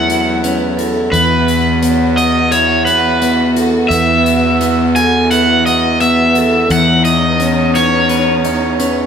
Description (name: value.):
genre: post-rock.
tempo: 86 BPM.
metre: 4/4.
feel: straight.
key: unclear.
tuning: A4 = 441 Hz.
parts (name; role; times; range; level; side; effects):
crunchy overdriven guitar; melody; 0.0-9.1 s; B4 to G#5; -14 LUFS; equal; none.
clear studio string section; sustained chords; 0.0-9.1 s; E3 to F#4; -21 LUFS; equal; none.
clean electric guitar; arpeggios; 0.0-9.1 s; E2 to B4; -17 LUFS; left 2 dB; none.
vibraphone with hard mallets; arpeggios; 0.0-9.1 s; A4 to C#5; -22 LUFS; right 4 dB; none.
fuzz fingered electric bass; bass; 0.0-9.1 s; E2; -17 LUFS; equal; overdrive.
hi-hat; drums; 0.1-9.0 s; none; -27 LUFS; left 3 dB; none.
room: wet large studio reverb, RT60 1.1 s.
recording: band playing live in one room.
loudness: -10 LUFS.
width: side -7 dB against mid.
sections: 0.0-9.1 A section.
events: none.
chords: 0.0 F#m7/E; 6.7 Badd9/E.